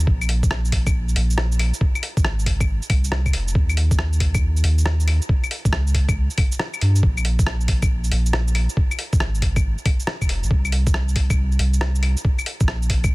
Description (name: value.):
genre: future garage.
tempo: 138 BPM.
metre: 4/4.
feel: swing 65% on 16ths.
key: Bb dorian.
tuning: A4 = 440 Hz.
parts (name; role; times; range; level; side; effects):
warm sub bass; bass; 0.0-13.1 s; F1 to G2; -19 LUFS; equal; tube saturation, sidechain pumping.
lo-fi sampler-style drum kit; drums; 0.0-13.1 s; claves, hi-hat, rim click, shaker; -26 LUFS; left 1 dB; soft clipping on snare.
electronic kick drum; drums; 0.1-13.1 s; none; -20 LUFS; equal; none.
room: little or no reverb.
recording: dense, heavily limited modern master.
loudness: -18 LUFS.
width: side -22 dB against mid.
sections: 0.0-13.1 A section.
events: none.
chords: none.